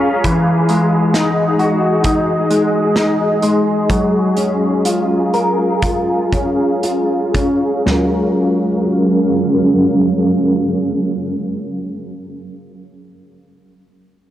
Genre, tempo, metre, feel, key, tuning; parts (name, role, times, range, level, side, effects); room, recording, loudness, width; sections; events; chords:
dream pop; 57-67 BPM; 4/4; straight; F# major; A4 = 444 Hz
granular cloud pad; sustained chords; 0.0-11.9 s; F#3 to D#6; -17 LUFS; right 1 dB; built-in reverb, low-pass filter
clean electric guitar; arpeggios; 0.0-12.0 s; E3 to A#4; -16 LUFS; left 1 dB; ensemble chorus, low-pass filter, analog delay
loose indie drum kit; drums; 0.2-8.1 s; hi-hat, kick drum, snare drum, toms; -21 LUFS; right 1 dB
light reverb, studio ambience; cassette tape; -13 LUFS; side -12 dB against mid
0.0-7.9 A section; 7.9-12.1 B section
filter sweep 0.0-7.9; slowing down 0.2-7.9
0.2 Emaj9; 3.9 F#maj9